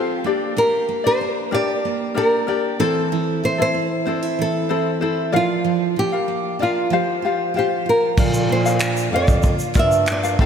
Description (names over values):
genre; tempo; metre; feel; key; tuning
acoustic pop; 95 BPM; 4/4; straight; unclear; A4 = 440 Hz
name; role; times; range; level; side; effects
nylon-string guitar; melody; 0.0-10.5 s; F4 to E5; -21 LUFS; right 1 dB; slapback echo
ukulele; accompaniment; 0.0-10.5 s; C4 to F5; -23 LUFS; left 5 dB; slapback echo
picked steel-string acoustic guitar; arpeggios; 0.0-10.5 s; E3 to G4; -25 LUFS; right 7 dB; slapback echo
warm bass clarinet; bass; 8.2-10.5 s; F2 to Bb2; -22 LUFS; right 1 dB; none
vintage brush drum kit; drums; 8.2-10.5 s; crash cymbal, finger snaps, kick drum, shaker; -19 LUFS; equal; none
group handclap; percussion; 8.8-10.2 s; none; barely audible; none; none
room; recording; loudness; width
moderate lush hall reverb, RT60 3.1 s; big arena sound; -17 LUFS; side -7 dB against mid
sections
0.0-8.2 A section; 8.2-10.5 B section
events
none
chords
0.2 Gm; 2.8 Am; 5.3 Bb; 6.9 Csus4; 8.2 Bb